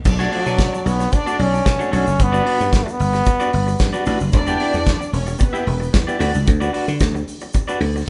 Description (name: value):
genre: disco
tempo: 112 BPM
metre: 4/4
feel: straight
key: unclear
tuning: A4 = 440 Hz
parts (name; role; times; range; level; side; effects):
- dark symphonic string section; second line; 0.1-5.9 s; B3 to D5; -28 LUFS; equal; none
- electric guitar at the edge of break-up; accompaniment; 0.1-8.0 s; A3 to E5; -27 LUFS; equal; none
- dry thumbed slap bass; bass; 0.1-8.0 s; E1 to D3; -23 LUFS; equal; none
- damped 70s drum kit; drums; 0.1-7.9 s; crash cymbal, hi-hat, kick drum, snare drum; -23 LUFS; equal; none
- egg shaker; percussion; 0.1-8.1 s; none; -43 LUFS; equal; none
- bright trombone; melody; 0.3-4.1 s; F#3 to D4; -23 LUFS; equal; none
room: moderate large studio reverb, RT60 1.2 s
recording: band playing live in one room, nothing above 10.8 kHz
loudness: -18 LUFS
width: mono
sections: 0.1-8.1 A section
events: none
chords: 0.1 Bm9; 2.2 Gmaj7; 4.3 Em7; 6.2 D6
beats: | 0.05 0.59 1.12 1.66 | 2.19 2.73 3.26 3.80 | 4.33 4.87 5.40 5.94 | 6.47 7.01 7.54 8.08